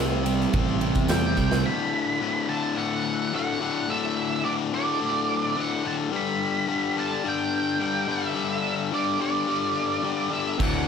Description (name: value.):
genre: classic rock.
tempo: 107 BPM.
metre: 4/4.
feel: straight.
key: D mixolydian.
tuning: A4 = 440 Hz.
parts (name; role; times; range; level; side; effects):
crunchy overdriven guitar; riff; 0.0-1.6, 10.6-10.9 s; D2 to C4; -29 LUFS; right 12 dB; none.
distorted electric guitar; riff; 0.0-10.9 s; D2 to C4; -26 LUFS; left 7 dB; overdrive.
thick fuzz guitar; riff; 0.0-1.7, 10.6-10.9 s; D2 to C4; -32 LUFS; right 3 dB; none.
growling fingered electric bass; bass; 0.0-1.6, 10.6-10.9 s; A1 to E2; -27 LUFS; right 1 dB; overdrive.
big rock drum kit; drums; 0.3-1.6, 10.6-10.7 s; crash cymbal, kick drum, ride cymbal, snare drum; -28 LUFS; right 1 dB; none.
tambourine; percussion; 0.3-1.5 s; none; -46 LUFS; right 9 dB; none.
octave-fuzz lead guitar; melody; 1.1-10.9 s; D5 to B5; -28 LUFS; right 4 dB; distortion.
room: moderate lush hall reverb, RT60 1.9 s, small room ambience.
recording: big arena sound.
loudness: -23 LUFS.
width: side -7 dB against mid.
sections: 0.0-1.7 A section; 1.7-10.9 B section.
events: drum fill 1.4.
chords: 0.0 C; 1.7 D; 6.1 G5.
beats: 0.54 1.09 | 1.65 2.21 2.77 3.33 | 3.89 4.45 5.01 5.57 | 6.13 6.69 7.25 7.81 | 8.37 8.93 9.48 10.04 | 10.60.